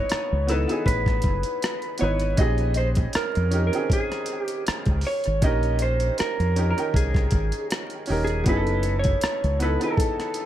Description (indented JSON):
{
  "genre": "R&B, neo-soul",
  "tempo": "79 BPM",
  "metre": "4/4",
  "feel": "swing 54% on 16ths",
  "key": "Bb dorian",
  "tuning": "A4 = 441 Hz",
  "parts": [
    { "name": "electric guitar through a small old amp", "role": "melody", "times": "0.0-10.5 s", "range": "Ab4 to Eb5", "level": "-27 LUFS", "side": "right 1 dB", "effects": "dub echo" },
    { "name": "clear upright piano", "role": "accompaniment", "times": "0.0-10.5 s", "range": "Cb4 to G5", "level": "-29 LUFS", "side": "right 1 dB", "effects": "dub echo" },
    { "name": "deep dub fingered electric bass", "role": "bass", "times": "0.1-9.8 s", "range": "Eb1 to F2", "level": "-24 LUFS", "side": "equal", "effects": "none" },
    { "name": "boom bap sampler-style drum kit", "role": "drums", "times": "0.1-10.5 s", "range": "hi-hat, kick drum, rim click", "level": "-26 LUFS", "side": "equal", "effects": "none" }
  ],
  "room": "digital ambience",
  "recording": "echo-heavy mix, vinyl crackle",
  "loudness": "-21 LUFS",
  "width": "side -12 dB against mid",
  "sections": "0.0-10.5 A section",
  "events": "none",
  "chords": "0.0 Gbm11; 2.4 Bbm11; 8.5 Gbm11",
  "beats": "0.10 0.86 1.62 | 2.38 3.14 3.90 4.66 | 5.42 6.18 6.94 7.70 | 8.46 9.22 9.98"
}